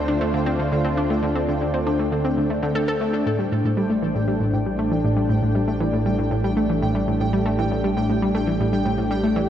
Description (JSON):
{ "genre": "ambient, sequencer-driven space music", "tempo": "118 BPM", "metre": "4/4", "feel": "straight", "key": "A minor", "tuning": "A4 = 440 Hz", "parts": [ { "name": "lush unison pad", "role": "sustained chords", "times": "0.0-9.5 s", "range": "A3 to C5", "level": "-24 LUFS", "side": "equal", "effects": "chorus" }, { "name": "analog drone", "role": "bass", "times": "0.0-9.5 s", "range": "A1 to D2", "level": "-29 LUFS", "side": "equal", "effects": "chorus" }, { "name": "pulsing gated texture", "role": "texture", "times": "0.0-9.5 s", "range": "G5", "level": "-34 LUFS", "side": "right 1 dB", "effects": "chorus, built-in reverb" }, { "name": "analog pluck", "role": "riff", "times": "0.1-9.4 s", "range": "A2 to A4", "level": "-22 LUFS", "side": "equal", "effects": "chorus, ping-pong delay" } ], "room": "wet lush hall reverb, RT60 3.2 s", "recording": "worn, warbling old tape, cassette tape, warbly pitch drift", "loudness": "-19 LUFS", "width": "side -10 dB against mid", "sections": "0.0-9.5 A section", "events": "none", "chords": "0.0 Dm7; 3.3 Am7" }